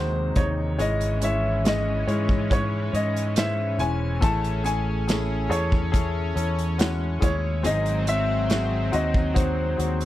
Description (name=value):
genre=pop ballad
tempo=70 BPM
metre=4/4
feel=straight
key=C# harmonic minor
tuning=A4 = 440 Hz
part: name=warm baby grand piano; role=melody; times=0.0-10.1 s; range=B#4 to A5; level=-28 LUFS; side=equal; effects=slapback echo
part: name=clear baby grand piano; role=accompaniment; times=0.0-10.1 s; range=G#2 to D#5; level=-30 LUFS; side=left 4 dB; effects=none
part: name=lush unison pad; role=sustained chords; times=0.0-10.1 s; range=B#2 to C#4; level=-33 LUFS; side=equal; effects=chorus
part: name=fingered electric bass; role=bass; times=0.0-10.1 s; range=E1 to G#2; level=-26 LUFS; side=equal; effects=none
part: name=modern studio drum kit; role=drums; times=0.4-10.1 s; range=hi-hat, kick drum, snare drum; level=-25 LUFS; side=equal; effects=none
part: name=picked steel-string acoustic guitar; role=arpeggios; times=4.2-10.1 s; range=G#2 to G#4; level=-35 LUFS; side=right 4 dB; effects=slapback echo
room=little or no reverb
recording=none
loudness=-21 LUFS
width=side -14 dB against mid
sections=0.0-10.1 A section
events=none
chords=0.0 G#; 0.8 C#m/G#; 4.2 Amaj7; 7.6 G#7